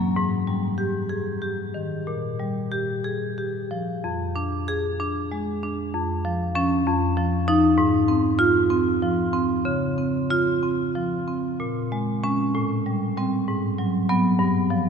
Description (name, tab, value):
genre	classical, contemporary piece for solo marimba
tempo	60-66 BPM (dotted quarters)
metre	6/8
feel	rubato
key	unclear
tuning	A4 = 440 Hz
part	marimba with medium hard mallets	solo	0.0-14.9 s	F2 to Ab4	-21 LUFS	equal	none
room	wet cathedral reverb, RT60 4.6 s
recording	minimal, uncompressed stereo recording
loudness	-21 LUFS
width	side -6 dB against mid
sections	0.0-4.0 A section; 4.0-14.9 B section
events	none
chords	0.2 Ab5; 2.1 Bb5; 4.0 Fm6; 5.9 Db/F; 6.9 Ebsus2/F; 7.8 Ab6; 9.7 Dbmaj7; 11.6 Bbm7; 12.5 Am7; 13.5 Abm7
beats	| 0.18 1.11 | 2.08 3.06 | 4.04 4.99 | 5.93 6.86 | 7.78 8.70 | 9.66 10.63 | 11.60 12.54 | 13.48 14.40